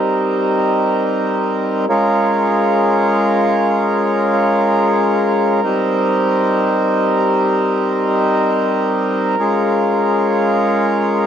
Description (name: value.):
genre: hip hop.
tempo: free time.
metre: none.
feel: none.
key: Bb dorian.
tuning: A4 = 438 Hz.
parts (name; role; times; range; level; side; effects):
hand-pumped harmonium; solo; 0.0-11.3 s; G3 to Bb4; -13 LUFS; equal; low-pass filter.
room: light reverb, small room ambience.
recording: dark, warm production.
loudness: -13 LUFS.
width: side -9 dB against mid.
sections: 0.0-1.9 A section; 1.9-11.3 B section.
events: none.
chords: 0.0 Cm7; 1.9 Bbm7; 5.6 Cm7; 9.4 Bbm7.